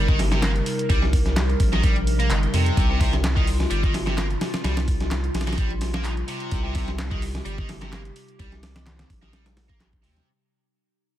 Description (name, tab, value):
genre	breakbeat, breaks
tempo	128 BPM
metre	4/4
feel	swing 54% on 16ths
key	C minor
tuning	A4 = 440 Hz
part	warbly tape-like pad	sustained chords	0.0-10.3 s	C3 to Bb4	-30 LUFS	left 1 dB	chorus, built-in reverb, vintage 12-bit sampler grit, sidechain pumping
part	tight distorted guitar	riff	0.0-10.3 s	C3 to Bb3	-30 LUFS	equal	distortion, dub echo
part	saturated sub bass	bass	0.0-10.2 s	G1 to F2	-24 LUFS	equal	none
part	dusty soul sampler-style drum kit	drums	0.1-10.3 s	hi-hat, kick drum, snare drum	-24 LUFS	equal	none
part	punchy analog drum machine	drums	0.1-10.3 s	handclaps, hi-hat	-35 LUFS	equal	none
room	digital ambience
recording	dense, heavily limited modern master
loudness	-20 LUFS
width	side -12 dB against mid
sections	0.0-10.3 A section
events	drop 0.0-10.3; fade-out 2.8-10.3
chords	0.0 Cm